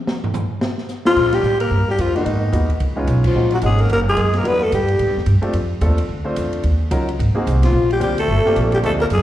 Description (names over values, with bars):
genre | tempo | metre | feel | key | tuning
jazz, small-group swing and bop | 219 BPM | 4/4 | swing 60% on 8ths | unclear | A4 = 440 Hz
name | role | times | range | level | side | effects
open jazz drum kit | drums | 0.1-9.2 s | crash cymbal, hi-hat, kick drum, ride cymbal, snare drum, toms | -28 LUFS | equal | none
growling alto saxophone | melody | 1.1-5.2, 7.7-9.2 s | Eb4 to B4 | -18 LUFS | left 2 dB | slapback echo
clear trombone | second line | 1.1-5.2, 7.6-9.2 s | Eb3 to B3 | -24 LUFS | right 4 dB | slapback echo
upright bass | bass | 1.2-9.2 s | Gb1 to Bb2 | -18 LUFS | equal | none
warm baby grand piano | accompaniment | 2.1-9.0 s | Gb3 to C5 | -23 LUFS | equal | slapback echo
room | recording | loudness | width
moderate plate reverb, RT60 1.0 s, studio reverb | live gig heard through the venue's PA, recital hall reverb | -15 LUFS | side -13 dB against mid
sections
0.0-1.2 A section; 1.2-9.2 B section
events
drum solo 0.0-1.2; band accent 1.3, 3.2, 7.6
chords
0.0 N.C.; 1.2 Bb5; 2.3 Abm7; 2.8 Db7; 3.4 Gb69; 4.5 Em7; 5.0 A5; 5.5 Dm7; 6.6 Ebm7; 7.2 Ab9; 7.7 Bb6